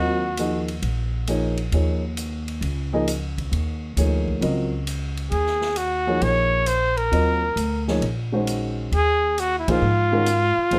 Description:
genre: modal jazz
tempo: 133 BPM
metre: 4/4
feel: swing 68% on 8ths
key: Eb dorian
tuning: A4 = 439 Hz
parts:
  - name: breathy trumpet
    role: melody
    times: 0.0-0.6, 5.3-10.8 s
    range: Fb4 to Db5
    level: -24 LUFS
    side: equal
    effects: none
  - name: dark baby grand piano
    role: accompaniment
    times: 0.0-10.8 s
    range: Eb3 to Eb5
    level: -27 LUFS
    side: equal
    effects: none
  - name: upright bass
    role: bass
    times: 0.0-10.8 s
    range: Bb1 to Bb2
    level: -27 LUFS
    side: equal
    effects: none
  - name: swinging big-band drum kit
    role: drums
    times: 0.4-10.8 s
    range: hi-hat, kick drum, ride cymbal, snare drum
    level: -37 LUFS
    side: equal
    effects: none
room: moderate small room reverb, RT60 0.6 s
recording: none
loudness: -23 LUFS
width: mono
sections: 0.0-10.8 A section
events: band accent 9.6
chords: 0.0 Ebm9; 1.7 Db; 5.3 Ebm9; 8.9 Db/Eb (rootless)

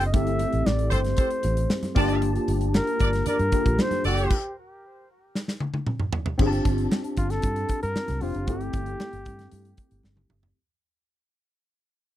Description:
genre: polished 1980s jazz-funk pop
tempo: 115 BPM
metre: 4/4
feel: straight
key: unclear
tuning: A4 = 439 Hz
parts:
  - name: breathy flugelhorn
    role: melody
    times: 0.0-10.0 s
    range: F4 to E5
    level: -29 LUFS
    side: equal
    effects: none
  - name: warm horn section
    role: second line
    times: 0.0-4.4 s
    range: D4 to D5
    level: -29 LUFS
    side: right 1 dB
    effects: none
  - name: tine electric piano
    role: accompaniment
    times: 0.0-10.6 s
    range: A3 to A5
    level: -28 LUFS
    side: left 1 dB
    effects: overdrive, ensemble chorus
  - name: vintage muted fingered electric bass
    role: bass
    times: 0.0-10.5 s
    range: F1 to G2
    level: -27 LUFS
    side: equal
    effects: none
  - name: modern studio drum kit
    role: drums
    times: 0.0-10.6 s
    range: crash cymbal, hi-hat, kick drum, snare drum, toms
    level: -26 LUFS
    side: equal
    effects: none
  - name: congas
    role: percussion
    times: 0.1-10.3 s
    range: none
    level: -38 LUFS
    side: right 2 dB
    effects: none
room: light reverb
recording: dry, close 1970s-style studio recording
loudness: -22 LUFS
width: side -13 dB against mid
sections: 0.0-6.4 A section; 6.4-10.6 B section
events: stop 4.3-6.4; drum fill 5.3-6.4, 10.0-10.6; fade-out 6.4-10.6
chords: 0.1 Am7/G; 2.0 Gm9; 4.3 N.C.; 6.4 F69; 8.5 Am7/G

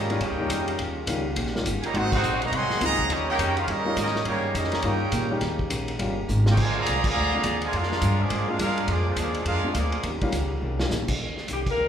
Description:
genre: jazz, big band swing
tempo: 208 BPM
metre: 4/4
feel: swing 62% on 8ths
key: Eb major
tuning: A4 = 441 Hz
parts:
  - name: clear trumpet section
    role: melody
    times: 0.0-10.1 s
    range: Ab3 to C6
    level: -27 LUFS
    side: right 1 dB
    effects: none
  - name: brilliant trombone section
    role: second line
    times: 0.0-10.0 s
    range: Db3 to G4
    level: -31 LUFS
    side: right 2 dB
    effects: none
  - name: vintage hollow-body jazz guitar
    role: accompaniment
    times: 0.0-11.9 s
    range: Ab2 to G4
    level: -36 LUFS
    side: left 2 dB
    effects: none
  - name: clear trombone section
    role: sustained chords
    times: 0.0-11.2 s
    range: C3 to F4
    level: -36 LUFS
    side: right 1 dB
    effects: none
  - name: upright bass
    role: bass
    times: 0.0-11.9 s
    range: G1 to Bb2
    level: -28 LUFS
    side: equal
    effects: none
  - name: clear upright piano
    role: accompaniment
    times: 0.1-10.9 s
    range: G3 to G4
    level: -32 LUFS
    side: left 2 dB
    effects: none
  - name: vintage drum kit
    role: drums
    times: 0.1-11.7 s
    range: crash cymbal, hi-hat, kick drum, ride cymbal, snare drum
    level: -30 LUFS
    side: equal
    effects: none
  - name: mellow saxophone section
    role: melody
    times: 11.5-11.9 s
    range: G4 to Bb4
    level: -24 LUFS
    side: left 3 dB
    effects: none
room: wet recital hall reverb, RT60 1.4 s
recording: recorded in a church or concert hall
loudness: -22 LUFS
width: side -9 dB against mid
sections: 0.0-11.2 A section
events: band accent 2.1, 7.0, 11.6; drum fill 6.3, 10.6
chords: 0.0 Eb7; 1.9 Ab7; 3.1 Eb7; 6.6 Bb7; 10.0 Eb7

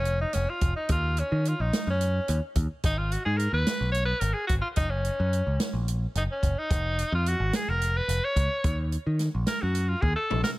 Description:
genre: progressive instrumental, band music in an uneven meter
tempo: 217 BPM (eighths)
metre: 7/8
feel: straight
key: unclear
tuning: A4 = 439 Hz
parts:
  - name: bright tenor saxophone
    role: melody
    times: 0.0-10.5 s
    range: C#4 to C#5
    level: -29 LUFS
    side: equal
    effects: none
  - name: picked electric bass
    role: bass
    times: 0.0-10.4 s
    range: F1 to D#3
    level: -27 LUFS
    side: equal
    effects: none
  - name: open jazz drum kit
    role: drums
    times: 0.1-10.6 s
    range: hi-hat, kick drum, snare drum, toms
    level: -29 LUFS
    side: equal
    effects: none
room: small room ambience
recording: none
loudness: -24 LUFS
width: side -18 dB against mid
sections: 0.0-10.6 A section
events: tenor saxophone solo 0.0-10.6; drum fill 10.0-10.6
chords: 0.0 F7(no3); 0.9 D#m7; 2.8 G#m; 4.8 F#; 6.7 C#/E#; 8.7 D#m

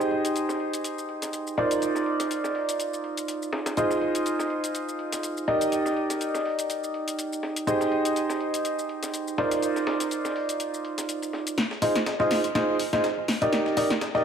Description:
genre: piano house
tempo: 123 BPM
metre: 4/4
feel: swing 55% on 16ths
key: F dorian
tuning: A4 = 437 Hz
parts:
  - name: clear upright piano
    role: riff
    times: 0.0-14.2 s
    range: Eb4 to Eb5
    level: -25 LUFS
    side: right 1 dB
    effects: low-pass filter, digital delay
  - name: breakbeat sampler-style drum kit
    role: drums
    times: 0.0-14.2 s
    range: hi-hat, snare drum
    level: -36 LUFS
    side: left 1 dB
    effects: high-pass filter on hats, low-pass filter on hats, high-pass filter on snare, low-pass filter on snare
  - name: punchy analog drum machine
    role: drums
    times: 0.0-14.1 s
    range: hi-hat, shaker, snare drum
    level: -30 LUFS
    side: left 1 dB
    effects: none
room: moderate lush hall reverb, RT60 2.2 s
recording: none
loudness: -24 LUFS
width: side -7 dB against mid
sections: 0.0-11.6 A section; 11.6-14.2 B section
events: build-up 11.6-14.2; drum fill 11.6-14.2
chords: 0.0 Abmaj7; 1.6 Cm11; 3.8 Fm7; 5.5 Ebmaj7; 7.7 Abmaj7; 9.4 Cm11; 11.6 Fm7; 13.3 Ebmaj7

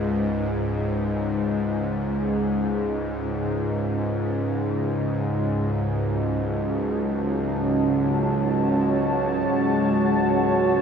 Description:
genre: dark ambient drone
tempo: free time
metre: none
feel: none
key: unclear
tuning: A4 = 440 Hz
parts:
  - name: bowed-like drone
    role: drone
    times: 0.0-10.8 s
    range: C#2 to G#2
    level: -23 LUFS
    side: equal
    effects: built-in reverb
  - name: deep dark ambient pad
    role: sustained chords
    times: 4.3-10.8 s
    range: C#4 to A5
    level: -24 LUFS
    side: right 1 dB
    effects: chorus, built-in reverb
room: wet cathedral reverb, RT60 6.6 s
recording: none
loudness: -21 LUFS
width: side -6 dB against mid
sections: 0.0-10.8 A section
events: none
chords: 0.0 C#5; 3.5 F#m/C#

